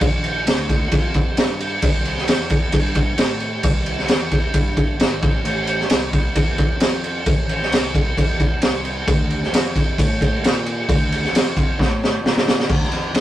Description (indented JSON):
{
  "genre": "garage rock duo or trio",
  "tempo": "132 BPM",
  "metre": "4/4",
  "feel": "straight",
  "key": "D minor",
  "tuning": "A4 = 440 Hz",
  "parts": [
    { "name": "fuzz fingered electric bass", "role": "bass", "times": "0.0-13.2 s", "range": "G#1 to Bb2", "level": "-26 LUFS", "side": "equal", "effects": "overdrive" },
    { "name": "raw garage drum kit", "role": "drums", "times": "0.0-13.2 s", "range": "crash cymbal, kick drum, ride cymbal, snare drum", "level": "-17 LUFS", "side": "equal", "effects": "none" }
  ],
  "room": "light reverb",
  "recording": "rough rehearsal-room recording, tube saturation",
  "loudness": "-16 LUFS",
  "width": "side -13 dB against mid",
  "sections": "0.0-12.7 A section",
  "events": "drum fill 11.8-12.7",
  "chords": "none",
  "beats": "| 0.01 0.47 0.92 1.37 | 1.83 2.28 2.73 3.19 | 3.64 4.09 4.55 5.00 | 5.46 5.91 6.36 6.81 | 7.27 7.72 8.17 8.62 | 9.07 9.53 9.98 10.43 | 10.88 11.33 11.79 12.24 | 12.69 13.14"
}